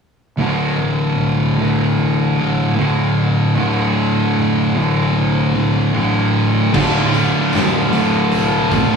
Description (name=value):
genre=stoner and doom metal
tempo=76 BPM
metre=4/4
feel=straight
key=D minor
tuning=A4 = 437 Hz
part: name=fuzz guitar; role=riff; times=0.4-9.0 s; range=D2 to D3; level=-17 LUFS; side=right 3 dB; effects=distortion
part: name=thick fuzz guitar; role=riff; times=0.4-9.0 s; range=D2 to D3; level=-19 LUFS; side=left 4 dB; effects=distortion
part: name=fuzz fingered electric bass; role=bass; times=0.4-8.9 s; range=D1 to C2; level=-24 LUFS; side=equal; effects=overdrive
part: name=tight distorted guitar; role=riff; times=6.7-9.0 s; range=D2 to F4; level=-20 LUFS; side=equal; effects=distortion
part: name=oversized low-tuned drum kit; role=drums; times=6.7-8.9 s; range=crash cymbal, hi-hat, kick drum, snare drum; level=-20 LUFS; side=right 1 dB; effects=none
room=light reverb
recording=rough rehearsal-room recording, studio ambience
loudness=-14 LUFS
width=side -6 dB against mid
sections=0.4-6.7 A section; 6.7-9.0 B section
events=none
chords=0.4 Dm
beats=| 0.39 1.19 1.98 2.77 | 3.57 4.36 5.16 5.95 | 6.74 7.53 8.32